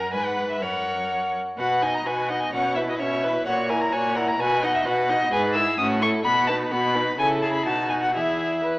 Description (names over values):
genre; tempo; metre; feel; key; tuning
quick classical-period movement for string quartet; 128 BPM; 2/4; straight; B major, E major from 5.3 s; A4 = 440 Hz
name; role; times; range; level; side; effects
rich violin; melody; 0.0-8.6 s; D#5 to E6; -24 LUFS; left 1 dB; none
rich violin; second line; 0.0-8.8 s; F#4 to D#5; -27 LUFS; equal; none
bright viola; accompaniment; 0.0-8.8 s; B3 to B4; -29 LUFS; right 1 dB; none
rich cello; bass; 0.0-8.8 s; E2 to C#3; -29 LUFS; right 1 dB; none
room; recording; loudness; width
wet recital hall reverb, RT60 1.6 s; small speaker sound; -20 LUFS; side -21 dB against mid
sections
0.0-1.6 A section; 1.6-8.8 B section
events
none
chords
0.1 G#m; 0.6 F#; 1.6 B; 2.5 C#m7/B; 3.5 F#7/A#; 4.4 B; 5.3 E/G#; 5.8 F#m7/A; 6.3 B; 7.2 A/C#; 7.7 B7; 8.2 E